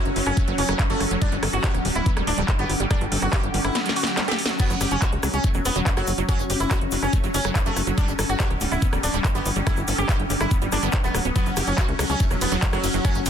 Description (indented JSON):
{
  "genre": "psychedelic trance",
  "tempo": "142 BPM",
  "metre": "4/4",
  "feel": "straight",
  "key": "unclear",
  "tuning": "A4 = 440 Hz",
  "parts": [
    { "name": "swarming drone", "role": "sustained chords", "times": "0.0-13.3 s", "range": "F#3 to C#4", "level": "-30 LUFS", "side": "equal", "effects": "built-in reverb, sidechain pumping" },
    { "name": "deep dark ambient pad", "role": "texture", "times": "0.0-13.3 s", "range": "D3 to D6", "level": "-32 LUFS", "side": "left 1 dB", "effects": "chorus, built-in reverb, sidechain pumping" },
    { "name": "tight sequencer bass", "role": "bass", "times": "0.1-13.3 s", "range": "D1 to C#2", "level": "-26 LUFS", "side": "equal", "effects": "none" },
    { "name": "drum and bass drum kit", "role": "drums", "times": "0.1-13.3 s", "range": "crash cymbal, handclaps, hi-hat, ride cymbal, rim click, snare drum", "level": "-28 LUFS", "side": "equal", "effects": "none" },
    { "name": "wide unison pluck", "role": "riff", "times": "0.2-13.3 s", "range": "F#3 to A4", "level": "-31 LUFS", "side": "right 1 dB", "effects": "auto-pan, sidechain pumping, digital delay" },
    { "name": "sitar", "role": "melody", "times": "0.3-13.2 s", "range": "F#3 to G4", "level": "-29 LUFS", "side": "right 1 dB", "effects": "phaser, sidechain pumping, ping-pong delay" },
    { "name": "electronic kick drum", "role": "drums", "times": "0.4-13.1 s", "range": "none", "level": "-22 LUFS", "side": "equal", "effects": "none" },
    { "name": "tube shaker", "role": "percussion", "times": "4.6-13.3 s", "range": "none", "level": "-37 LUFS", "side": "left 5 dB", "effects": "none" }
  ],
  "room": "digital ambience",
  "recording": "dense, heavily limited modern master",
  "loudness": "-20 LUFS",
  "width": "side -8 dB against mid",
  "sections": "0.0-13.3 A section",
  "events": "drum fill 3.8-4.6",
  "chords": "0.0 F#5; 1.2 G5; 4.6 F#5; 8.0 G5; 11.4 F#5",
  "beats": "0.37 0.79 | 1.22 1.64 2.06 2.48 | 2.91 3.33 3.75 4.17 | 4.60 5.02 5.44 5.86 | 6.29 6.71 7.13 7.55 | 7.98 8.40 8.82 9.24 | 9.67 10.09 10.51 10.93 | 11.36 11.78 12.20 12.62 | 13.05"
}